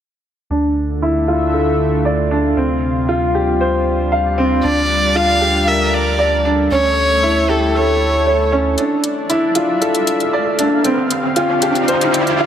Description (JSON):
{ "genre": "piano and strings electronica", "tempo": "116 BPM", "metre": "4/4", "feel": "straight", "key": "D minor", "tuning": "A4 = 439 Hz", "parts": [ { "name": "lush unison pad", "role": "sustained chords", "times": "0.5-12.5 s", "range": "C3 to F5", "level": "-21 LUFS", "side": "equal", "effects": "chorus" }, { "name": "warm baby grand piano", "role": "riff", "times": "0.5-12.5 s", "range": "C4 to F5", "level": "-16 LUFS", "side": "equal", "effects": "low-pass filter, tape echo" }, { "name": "round analog bass", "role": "bass", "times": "0.5-8.8 s", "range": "D2", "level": "-21 LUFS", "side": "equal", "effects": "none" }, { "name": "rich violin", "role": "melody", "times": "4.6-8.5 s", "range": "A4 to F5", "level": "-17 LUFS", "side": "equal", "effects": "tape echo" }, { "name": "electronic hi-hat", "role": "drums", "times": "8.8-12.4 s", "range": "none", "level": "-22 LUFS", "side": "left 2 dB", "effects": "overdrive" }, { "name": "riser", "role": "sound effects", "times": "9.5-12.5 s", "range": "none", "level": "-22 LUFS", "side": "right 1 dB", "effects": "none" } ], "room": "moderate lush hall reverb, RT60 1.7 s, studio reverb", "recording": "none", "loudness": "-13 LUFS", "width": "side -9 dB against mid", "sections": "0.5-8.8 A section; 8.8-12.5 B section", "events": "filter sweep on grand piano 0.5-8.8; build-up 8.8-12.5; riser 9.5-12.5", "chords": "0.5 Dmadd9; 2.6 Csus4/D; 4.6 Gm7/D; 6.7 A7/D; 8.8 Dmadd9; 10.8 Csus4/D", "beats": "| 0.51 1.02 1.54 2.06 | 2.57 3.09 3.61 4.13 | 4.64 5.16 5.68 6.20 | 6.71 7.23 7.75 8.26 | 8.78 9.30 9.81 10.33 | 10.85 11.37 11.88 12.40" }